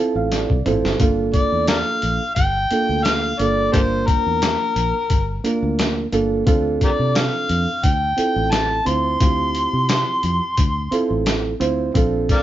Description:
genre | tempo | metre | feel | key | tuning
straight-eighth soul blues | 88 BPM | 4/4 | swing 54% on 16ths | D minor | A4 = 436 Hz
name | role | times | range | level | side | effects
reed electric piano | accompaniment | 0.0-12.4 s | Bb3 to A5 | -21 LUFS | right 3 dB | overdrive, spring reverb
fingered electric bass | bass | 0.2-12.4 s | G1 to C3 | -24 LUFS | equal | none
boom bap sampler-style drum kit | drums | 0.3-12.4 s | hi-hat, kick drum, snare drum, toms | -20 LUFS | left 1 dB | none
overdriven harmonica | melody | 1.3-12.4 s | G4 to C6 | -20 LUFS | left 1 dB | none
room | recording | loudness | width
moderate studio reverb, RT60 0.8 s | band playing live in one room, nothing above 7.5 kHz | -17 LUFS | side -12 dB against mid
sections
0.0-12.4 A section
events
reed electric piano fill 0.0-1.0; drum fill 0.3-1.0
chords
0.0 Dm7; 1.0 Gm7; 6.5 Dm7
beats
0.32 | 1.00 1.68 2.37 3.05 | 3.73 4.42 5.10 5.79 | 6.47 7.15 7.84 8.52 | 9.21 9.89 10.58 11.26 | 11.95

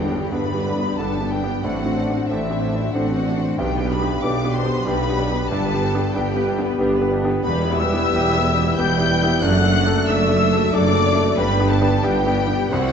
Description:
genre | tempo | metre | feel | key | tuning
classical | 92 BPM | 3/4 | rubato | G major | A4 = 440 Hz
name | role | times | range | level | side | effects
bright symphonic violin section | melody | 0.0-12.9 s | E5 to G6 | -29 LUFS | left 5 dB | none
clear grand piano | melody | 0.0-12.9 s | B1 to A4 | -23 LUFS | left 2 dB | none
bright symphonic violin section | second line | 0.0-12.9 s | E4 to G5 | -31 LUFS | left 3 dB | none
dark clarinet | second line | 0.0-12.9 s | B4 to D5 | -31 LUFS | left 1 dB | none
flute section | second line | 0.0-12.9 s | E5 to G6 | -27 LUFS | left 5 dB | none
clear symphonic viola section | accompaniment | 0.0-12.9 s | E3 to B4 | -30 LUFS | right 2 dB | none
warm bassoon | accompaniment | 0.0-12.9 s | D3 to A3 | -30 LUFS | right 2 dB | none
mellow French horn section | sustained chords | 0.0-12.9 s | G3 to G4 | -28 LUFS | left 2 dB | none
mellow tuba | bass | 0.0-12.9 s | E1 to C2 | -27 LUFS | right 3 dB | none
rich symphonic cello section | bass | 0.0-12.9 s | E2 to C3 | -27 LUFS | right 3 dB | none
rich symphonic double bass section | bass | 0.0-12.9 s | E1 to C2 | -26 LUFS | right 4 dB | none
room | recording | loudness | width
wet scoring stage reverb, RT60 1.6 s | dark, warm production, nothing above 7.8 kHz | -17 LUFS | side -7 dB against mid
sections
0.0-12.9 A section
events
none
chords
0.0 G; 1.6 D7/A; 3.6 G/B; 5.5 G; 7.5 Em; 9.4 D/F#; 11.4 G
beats
0.33 0.98 | 1.64 2.29 2.93 | 3.58 4.22 4.86 | 5.51 6.14 6.79 | 7.45 8.13 8.78 | 9.43 10.08 10.73 | 11.38 12.04 12.72

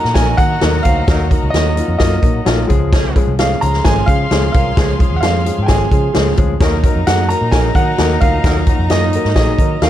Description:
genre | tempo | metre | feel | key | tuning
uptempo 1960s-style soul | 130 BPM | 4/4 | straight | unclear | A4 = 437 Hz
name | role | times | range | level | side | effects
clear baby grand piano | melody | 0.0-9.9 s | Eb5 to Bb5 | -20 LUFS | right 2 dB | none
warm studio violin section | second line | 0.0-9.9 s | Eb4 to C6 | -25 LUFS | equal | none
warm grand piano | accompaniment | 0.0-9.9 s | F3 to Db5 | -20 LUFS | left 4 dB | none
vintage muted fingered electric bass | bass | 0.0-9.9 s | Ab1 to Eb3 | -18 LUFS | equal | none
swinging big-band drum kit | drums | 0.0-9.9 s | hi-hat, kick drum, snare drum | -15 LUFS | equal | none
warm horn section | second line | 1.1-8.6 s | Eb3 to Bb4 | -28 LUFS | right 1 dB | none
vibraphone with soft mallets | second line | 5.7-9.9 s | Eb4 to Bb4 | -27 LUFS | right 4 dB | none
room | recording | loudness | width
studio reverb | dark, warm production | -11 LUFS | side -12 dB against mid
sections
0.0-9.9 A section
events
none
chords
0.0 Ebm; 2.7 Db; 6.6 Ebm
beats
0.16 0.62 | 1.08 1.54 2.00 2.46 | 2.92 3.38 3.85 4.31 | 4.77 5.23 5.68 6.14 | 6.60 7.06 7.52 7.98 | 8.44 8.90 9.36 9.81

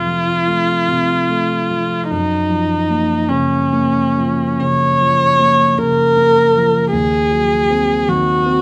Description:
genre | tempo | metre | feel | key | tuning
classical, romantic duo for viola and grand piano | 45-53 BPM (dotted quarters) | 12/8 | rubato | unclear | A4 = 435 Hz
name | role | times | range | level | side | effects
rich viola | melody | 0.0-8.6 s | Db4 to Db5 | -17 LUFS | equal | none
dark concert grand piano | accompaniment | 0.0-8.6 s | Eb2 to C4 | -20 LUFS | equal | none
room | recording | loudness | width
light reverb | none | -15 LUFS | mono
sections
0.0-8.6 A section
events
none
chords
0.0 F; 2.1 Gbmaj7; 6.9 Cdim/Eb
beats
0.87 | 2.10 3.29 4.60 5.78 | 6.93 8.08

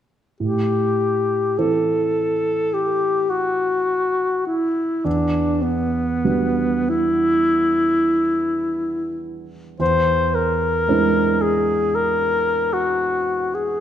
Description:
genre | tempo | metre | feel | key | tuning
classical, impressionist duo for alto saxophone and grand piano | 46-57 BPM | 4/4 | rubato | A dorian | A4 = 439 Hz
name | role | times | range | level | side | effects
warm alto saxophone | melody | 0.4-13.8 s | B3 to B#4 | -19 LUFS | left 1 dB | none
warm grand piano | accompaniment | 0.4-13.8 s | E2 to F#4 | -24 LUFS | right 3 dB | none
room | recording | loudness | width
wet recital hall reverb, RT60 1.4 s | none | -17 LUFS | side -10 dB against mid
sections
0.4-13.8 A section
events
none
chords
0.4 Am7; 5.1 Em9; 9.8 Eaug7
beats
| 0.40 1.58 2.73 3.89 | 5.06 6.26 7.50 8.67 | 9.80 10.89 11.96 13.12

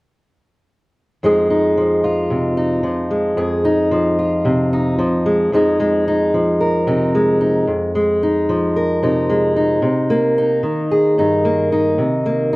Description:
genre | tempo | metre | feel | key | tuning
folk | 112 BPM | 4/4 | straight | unclear | A4 = 438 Hz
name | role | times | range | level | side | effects
fingerpicked steel-string acoustic guitar | accompaniment | 1.2-12.6 s | F2 to Bb4 | -14 LUFS | equal | none
room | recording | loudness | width
wet large studio reverb, RT60 1.1 s | worn, warbling old tape, cassette tape, warbly pitch drift | -14 LUFS | side -22 dB against mid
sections
1.2-5.5 A section; 5.5-12.6 B section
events
none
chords
1.2 Fm7; 9.8 Cm7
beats
| 1.23 1.77 2.30 2.84 | 3.38 3.92 4.46 4.99 | 5.53 6.07 6.61 7.14 | 7.68 8.22 8.76 9.30 | 9.84 10.37 10.91 11.45 | 11.99 12.52

